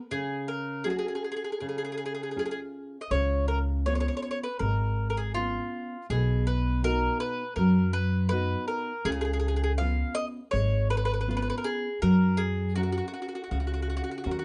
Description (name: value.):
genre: italian folk, Italian serenade.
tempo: 81 BPM.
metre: 4/4.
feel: straight.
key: unclear.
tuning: A4 = 440 Hz.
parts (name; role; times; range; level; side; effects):
mandolin; melody; 0.1-14.4 s; E#4 to E#5; -34 LUFS; equal; plate reverb.
nylon-string guitar; accompaniment; 0.1-14.4 s; B2 to A#4; -34 LUFS; equal; none.
upright bass; bass; 3.1-14.4 s; G#1 to F#2; -30 LUFS; equal; none.
room: moderate small room ambience, RT60 0.5 s.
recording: dark, warm production, nothing above 10.8 kHz.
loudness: -28 LUFS.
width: mono.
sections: 0.0-14.4 A section.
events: none.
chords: 0.1 C#sus4; 1.6 C#; 3.1 C#7; 6.1 B; 9.1 C#7; 12.0 F#.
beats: | 0.11 0.85 1.60 2.35 | 3.11 3.86 4.61 5.35 | 6.10 6.84 7.58 8.32 | 9.06 9.80 10.54 11.28 | 12.02 12.77 13.51 14.26.